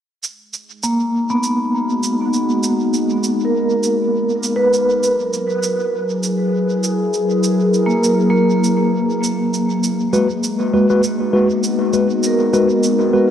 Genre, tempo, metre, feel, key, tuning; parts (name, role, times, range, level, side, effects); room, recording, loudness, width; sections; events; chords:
ambient dub; 100 BPM; 4/4; swing 56% on 16ths; G# minor; A4 = 441 Hz
warbly tape-like pad; sustained chords; 1.1-13.3 s; F#3 to A#4; -18 LUFS; left 1 dB; chorus, built-in reverb
cabasa; drums; 0.2-13.0 s; -27 LUFS; right 4 dB; studio reverb, dub echo
vibraphone with medium mallets; arpeggios; 0.8-13.3 s; A#3 to B4; -18 LUFS; right 1 dB; low-pass filter, dub echo
mellow tine electric piano; stabs; 10.1-13.3 s; G#3 to B4; -17 LUFS; left 1 dB; medium stereo tremolo, vintage 12-bit sampler grit, dub echo
moderate lush hall reverb, RT60 2.0 s; -15 LUFS; side -9 dB against mid
0.2-13.3 A section
0.2 G#m7; 5.0 F#9; 9.8 G#m7